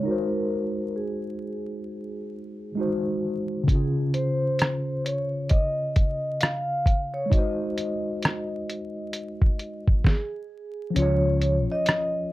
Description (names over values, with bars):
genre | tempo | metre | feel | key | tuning
lo-fi hip hop | 66 BPM | 4/4 | swing 62% on 16ths | Db major | A4 = 440 Hz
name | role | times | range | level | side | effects
vibraphone with soft mallets | melody | 0.0-12.3 s | Ab4 to F5 | -30 LUFS | equal | low-pass filter
tine electric piano | accompaniment | 0.0-12.3 s | Db3 to Db5 | -28 LUFS | equal | medium stereo tremolo, cassette tape, low-pass filter
lo-fi sampler-style drum kit | drums | 3.7-12.1 s | hi-hat, kick drum, rim click, snare drum | -22 LUFS | equal | none
mellow fretless electric bass | bass | 11.0-11.7 s | Db2 | -22 LUFS | equal | ensemble chorus
room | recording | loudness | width
moderate studio ambience, RT60 0.5 s | dark, warm production, vinyl crackle | -23 LUFS | side -17 dB against mid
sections
0.0-11.0 A section; 11.0-12.3 B section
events
filter sweep 0.0-11.0; stop 10.0-11.0; kick muted 11.0-12.3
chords
0.0 Ab7; 3.7 Dbmaj7; 7.3 Ab7; 11.0 Db